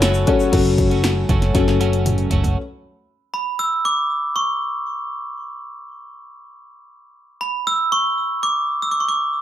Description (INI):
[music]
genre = piano-driven pop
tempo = 118 BPM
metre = 4/4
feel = straight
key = unclear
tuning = A4 = 440 Hz
[part]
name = clear upright piano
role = accompaniment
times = 0.0-2.6 s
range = F#3 to C#5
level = -20 LUFS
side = left 6 dB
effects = none
[part]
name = twelve-string electric guitar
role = riff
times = 0.0-2.6 s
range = F#2 to F#4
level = -24 LUFS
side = right 5 dB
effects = warbly pitch drift
[part]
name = vintage muted fingered electric bass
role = bass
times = 0.0-2.5 s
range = F#1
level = -19 LUFS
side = equal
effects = none
[part]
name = punchy analog drum machine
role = drums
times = 0.0-2.6 s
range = crash cymbal, hi-hat, kick drum, snare drum, toms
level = -20 LUFS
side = equal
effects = none
[part]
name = tube shaker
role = percussion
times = 0.0-0.5 s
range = none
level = -36 LUFS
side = left 8 dB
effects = none
[part]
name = glockenspiel with brass mallets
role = melody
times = 3.3-9.2 s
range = B5 to E6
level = -20 LUFS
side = right 1 dB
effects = none
[sound]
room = moderate large studio reverb, RT60 0.9 s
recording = none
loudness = -17 LUFS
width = side -11 dB against mid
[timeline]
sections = 0.5-2.6 A section; 2.6-9.4 B section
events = upright piano solo 0.5-2.6; drum fill 1.5-2.6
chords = 0.0 F#m; 2.6 N.C.